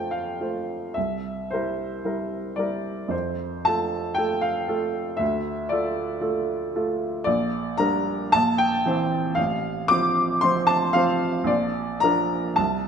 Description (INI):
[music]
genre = classical, romantic character piece for solo piano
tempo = 114 BPM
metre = 4/4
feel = uneven beats, rubato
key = F major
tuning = A4 = 440 Hz
[part]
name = clear upright piano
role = solo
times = 0.0-12.9 s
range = A1 to D6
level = -22 LUFS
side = equal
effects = none
[sound]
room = moderate recital hall reverb, RT60 1.5 s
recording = none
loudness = -22 LUFS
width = side -7 dB against mid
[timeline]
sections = 0.0-12.9 A section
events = none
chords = 0.0 F; 1.0 C7; 3.1 F; 5.2 Dm; 7.3 Gm/Bb; 8.3 C7/Bb; 9.4 F/A; 11.5 Bb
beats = 0.41 | 0.96 1.50 2.03 2.57 | 3.12 3.66 4.18 4.70 | 5.21 5.72 6.23 6.75 | 7.27 7.79 8.33 8.86 | 9.37 9.89 10.42 10.96 | 11.49 12.02 12.58